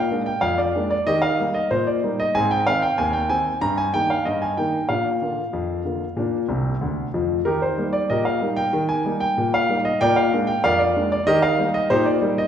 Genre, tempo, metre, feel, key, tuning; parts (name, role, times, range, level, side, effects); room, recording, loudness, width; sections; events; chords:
ragtime piano; 94 BPM; 2/4; straight; Eb major; A4 = 441 Hz
warm baby grand piano; solo; 0.0-12.5 s; C2 to Bb5; -19 LUFS; equal
wet recital hall reverb, RT60 1.7 s; recorded in a church or concert hall; -19 LUFS; side -9 dB against mid
0.0-7.5 A section; 7.5-12.5 A section
grand piano fill 6.5-7.5
0.0 Bb7; 1.1 Eb; 2.3 Ab; 3.6 Eb/G; 4.9 Bb; 7.5 Eb; 10.0 Bb7; 11.3 Eb